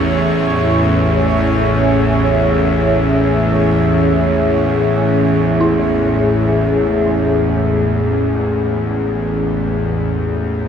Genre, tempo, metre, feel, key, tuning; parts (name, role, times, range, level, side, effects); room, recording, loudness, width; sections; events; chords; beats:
dark ambient drone; free time; A4 = 440 Hz
dark analog pad; sustained chords; 0.0-10.7 s; A2 to E5; -15 LUFS; left 1 dB; chorus
dark detuned synth bell; arpeggios; 0.0-10.7 s; E4 to G#4; -27 LUFS; right 2 dB
bowed-like drone; drone; 0.0-10.7 s; A1 to E2; -17 LUFS; equal; built-in reverb
bubbling stepped-filter texture; texture; 0.0-10.7 s; C#5; -23 LUFS; right 5 dB; chorus, built-in reverb
wet plate reverb, RT60 3.4 s; dreamy mix soaked in reverb; -13 LUFS; side -8 dB against mid
0.0-10.7 A section
0.0 C#m/A
free time